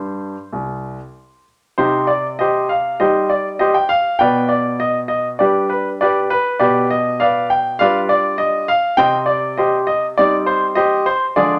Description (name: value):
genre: classical-period piano sonatina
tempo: 100 BPM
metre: 4/4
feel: rubato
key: C minor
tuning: A4 = 439 Hz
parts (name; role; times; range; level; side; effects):
- clear grand piano; solo; 0.0-11.6 s; C2 to G5; -17 LUFS; equal; none
room: moderate large studio reverb, RT60 0.9 s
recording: none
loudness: -17 LUFS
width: mono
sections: 0.0-1.8 A section; 1.8-11.6 B section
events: none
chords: 0.0 C5; 1.8 Cm; 4.2 G/B; 6.6 G7/B; 9.0 Cm